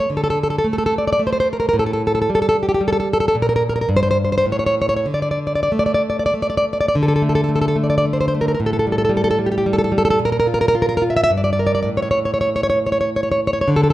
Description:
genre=romantic piece for solo classical guitar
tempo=93-115 BPM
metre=3/4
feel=rubato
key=D minor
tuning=A4 = 440 Hz
part: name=nylon-string guitar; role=solo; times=0.0-13.9 s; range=G2 to E5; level=-16 LUFS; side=equal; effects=none
room=moderate recital hall reverb, RT60 1.7 s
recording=dark, warm production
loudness=-16 LUFS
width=side -15 dB against mid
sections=0.0-6.9 A section; 6.9-13.9 A section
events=none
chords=0.1 D5; 1.8 Gsus2/A; 3.4 N.C.; 5.1 D5; 8.6 Gsus2/A; 10.2 Bb5; 11.3 Gm; 11.9 N.C.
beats=| 0.10 0.66 1.22 | 1.76 2.30 2.83 | 3.36 3.89 4.45 | 5.06 5.70 6.33 | 6.93 7.49 8.04 | 8.57 9.11 9.64 | 10.19 10.74 11.30 | 11.88 12.49 13.10 | 13.70

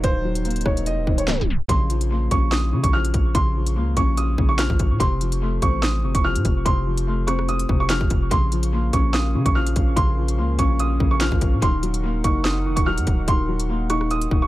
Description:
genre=hip hop, drill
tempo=145 BPM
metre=4/4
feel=half-time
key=Bb harmonic minor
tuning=A4 = 439 Hz
part: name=warm upright piano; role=melody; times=0.0-14.5 s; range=C5 to F6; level=-26 LUFS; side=right 2 dB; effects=low-pass filter, dub echo
part: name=dark grand piano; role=accompaniment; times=0.0-14.5 s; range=C3 to Eb4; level=-26 LUFS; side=left 4 dB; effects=low-pass filter
part: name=dark analog pad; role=sustained chords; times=0.0-1.7, 8.7-14.5 s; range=Gb3 to Gb5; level=-33 LUFS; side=right 3 dB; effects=chorus
part: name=long sustained 808-style bass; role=bass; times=0.0-14.5 s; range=Eb1 to Db3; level=-23 LUFS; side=equal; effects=none
part: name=drill drum kit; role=drums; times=0.0-14.4 s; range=hi-hat, kick drum, rim click, snare drum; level=-22 LUFS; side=equal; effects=none
part: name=swell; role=sound effects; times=0.4-1.7 s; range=none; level=-34 LUFS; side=right 2 dB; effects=none
room=digital ambience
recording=echo-heavy mix, tape stop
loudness=-18 LUFS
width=side -16 dB against mid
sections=0.0-1.7 A section; 1.7-14.5 B section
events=swell 0.4-1.7; tape stop 1.3-1.7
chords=0.0 Ebm; 1.7 Bbm; 5.0 F; 8.3 Bbm; 11.6 Ebm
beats=| 0.04 0.45 0.86 1.28 | 1.69 2.10 2.52 2.93 | 3.35 3.76 4.17 4.59 | 5.00 5.42 5.83 6.24 | 6.66 7.07 7.49 7.90 | 8.31 8.73 9.14 9.55 | 9.97 10.38 10.79 11.21 | 11.62 12.04 12.45 12.86 | 13.28 13.69 14.11

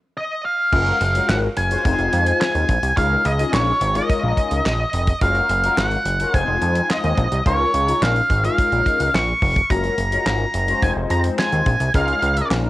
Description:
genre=early-eighties boogie funk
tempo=107 BPM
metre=4/4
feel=straight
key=Db major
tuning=A4 = 442 Hz
part: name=octave-fuzz lead guitar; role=melody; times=0.2-12.5 s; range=Db5 to Db6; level=-20 LUFS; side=equal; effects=distortion, cassette tape
part: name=mellow synth brass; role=accompaniment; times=0.7-12.7 s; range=Ab3 to C5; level=-25 LUFS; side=left 5 dB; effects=chorus, phaser, cassette tape
part: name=fat analog bass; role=bass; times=0.7-12.7 s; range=F1 to F2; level=-21 LUFS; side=equal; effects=none
part: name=damped 70s drum kit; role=drums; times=0.7-12.6 s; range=crash cymbal, handclaps, hi-hat, kick drum, snare drum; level=-23 LUFS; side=equal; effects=cassette tape
room=studio ambience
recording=home recording on cassette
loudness=-16 LUFS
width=side -16 dB against mid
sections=0.7-12.7 A section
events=break 0.0-0.7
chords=0.0 N.C.; 0.7 Gbmaj9; 1.9 Fm7; 3.0 Db69; 5.2 Gbmaj9; 6.3 Fm7; 7.5 Db69; 9.7 Gbmaj9; 10.8 Fm7; 11.9 Db69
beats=0.17 | 0.73 1.29 1.85 2.41 | 2.97 3.53 4.09 4.65 | 5.21 5.78 6.34 6.90 | 7.46 8.02 8.58 9.14 | 9.70 10.26 10.82 11.38 | 11.94 12.51

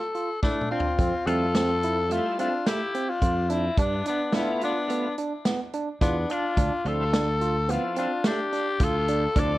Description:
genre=progressive instrumental, band music in an uneven meter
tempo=108 BPM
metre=5/4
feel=straight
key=unclear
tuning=A4 = 440 Hz
part: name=growling tenor saxophone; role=melody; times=0.0-9.6 s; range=D4 to D5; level=-27 LUFS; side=left 2 dB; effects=ping-pong delay
part: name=natural country drum kit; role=drums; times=0.1-9.5 s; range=hi-hat, kick drum, snare drum, toms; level=-27 LUFS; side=equal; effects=none
part: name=barky tine electric piano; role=arpeggios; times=0.2-9.5 s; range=A3 to F4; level=-31 LUFS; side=right 4 dB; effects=none
part: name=clean electric guitar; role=second line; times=0.4-9.6 s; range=A3 to A4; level=-34 LUFS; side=left 2 dB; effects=none
part: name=sustaining fretless electric bass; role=bass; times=1.0-9.6 s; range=D2 to G2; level=-27 LUFS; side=equal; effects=none
part: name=bright tonewheel organ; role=accompaniment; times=1.3-9.6 s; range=F3 to F4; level=-34 LUFS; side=right 1 dB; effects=overdrive, chorus vibrato, slow rotary speaker
room=light reverb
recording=worn, warbling old tape, cassette tape, warbly pitch drift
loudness=-23 LUFS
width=side -16 dB against mid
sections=1.0-9.6 A section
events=drum fill 0.4-1.0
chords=0.0 Dmadd9; 1.0 Fmaj7; 3.8 G7 (rootless); 6.6 Dm7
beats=0.43 | 0.99 1.55 2.11 2.67 3.23 | 3.79 4.34 4.90 5.46 6.02 | 6.58 7.13 7.69 8.25 8.80 | 9.36

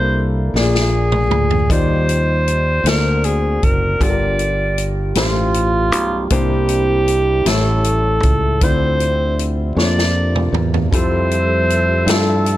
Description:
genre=slow gospel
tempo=52 BPM (dotted quarters)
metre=6/8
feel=straight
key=F major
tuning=A4 = 438 Hz
part: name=breathy alto saxophone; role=melody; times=0.0-12.6 s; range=F4 to D5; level=-19 LUFS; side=right 1 dB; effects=none
part: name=warm concert grand piano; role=accompaniment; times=0.0-12.6 s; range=G2 to D5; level=-22 LUFS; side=left 3 dB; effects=none
part: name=mellow French horn section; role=sustained chords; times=0.0-12.6 s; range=C3 to E5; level=-28 LUFS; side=right 1 dB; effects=none
part: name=fingered electric bass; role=bass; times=0.0-12.6 s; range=F#1 to G2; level=-18 LUFS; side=equal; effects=none
part: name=swinging big-band drum kit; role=drums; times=0.6-12.6 s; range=hi-hat, kick drum, snare drum, toms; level=-20 LUFS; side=equal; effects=none
part: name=tonewheel organ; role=sustained chords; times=10.9-12.6 s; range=F3 to E5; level=-25 LUFS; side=right 2 dB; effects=slow rotary speaker, chorus vibrato
room=studio ambience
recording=none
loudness=-14 LUFS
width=side -14 dB against mid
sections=0.0-12.6 A section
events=drum fill 0.5-1.7, 9.8-10.9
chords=0.0 C13; 0.5 Bb7; 1.7 Ebmaj9; 2.9 Daug7; 4.0 Gm9; 6.3 C9; 7.5 A7; 8.6 Dm9; 9.8 Bb/F; 10.9 Fmaj9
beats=0.55 | 1.70 2.85 | 4.01 5.16 | 6.31 7.46 | 8.62 9.77 | 10.92 12.07

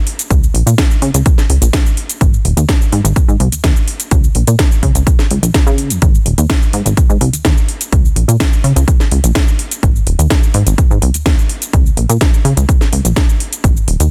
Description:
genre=filtered disco house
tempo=126 BPM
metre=4/4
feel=straight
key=unclear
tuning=A4 = 441 Hz
part: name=house drum kit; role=drums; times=0.1-14.1 s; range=hi-hat, shaker, snare drum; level=-21 LUFS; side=equal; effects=sidechain pumping on hats, sidechain pumping on perc
part: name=plucky analog bass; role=bass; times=0.3-14.1 s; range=Eb1 to Db3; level=-15 LUFS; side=equal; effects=sidechain pumping
part: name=electronic kick drum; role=drums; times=0.3-13.7 s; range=none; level=-14 LUFS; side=equal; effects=none
room=little or no reverb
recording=dense, heavily limited modern master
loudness=-12 LUFS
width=mono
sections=0.0-14.1 A section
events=none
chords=none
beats=| 0.30 0.78 1.26 1.73 | 2.21 2.69 3.16 3.64 | 4.11 4.59 5.07 5.54 | 6.02 6.50 6.97 7.45 | 7.92 8.40 8.88 9.35 | 9.83 10.30 10.78 11.26 | 11.73 12.21 12.69 13.16 | 13.64

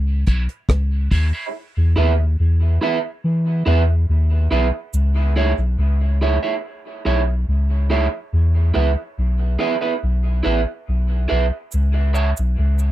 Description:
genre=dub reggae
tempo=71 BPM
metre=4/4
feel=straight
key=C# minor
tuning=A4 = 440 Hz
part: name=soft dub sub bass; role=bass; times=0.0-12.9 s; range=A1 to E3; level=-16 LUFS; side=equal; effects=none
part: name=electric guitar at the edge of break-up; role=accompaniment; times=0.3-12.3 s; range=E4 to E5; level=-23 LUFS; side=right 4 dB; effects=high-pass filter, dub echo
part: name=deep reggae drum kit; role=drums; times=0.3-1.3 s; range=hi-hat, kick drum, rim click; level=-18 LUFS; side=equal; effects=none
part: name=cabasa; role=percussion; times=4.9-5.1, 11.7-12.9 s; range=none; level=-36 LUFS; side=right 6 dB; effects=high-pass filter on perc
room=little or no reverb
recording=dry, close 1970s-style studio recording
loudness=-17 LUFS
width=side -14 dB against mid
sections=0.0-4.9 A section; 4.9-12.9 B section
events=break 0.0-4.9; part muted 1.5-4.9, 4.9-11.7; filter sweep 8.3-12.9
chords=0.0 C#m; 1.5 E; 4.9 C#m; 8.3 E; 11.7 C#m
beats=0.70 | 1.54 2.39 3.24 4.08 | 4.93 5.78 6.63 7.48 | 8.33 9.17 10.02 10.87 | 11.72 12.57

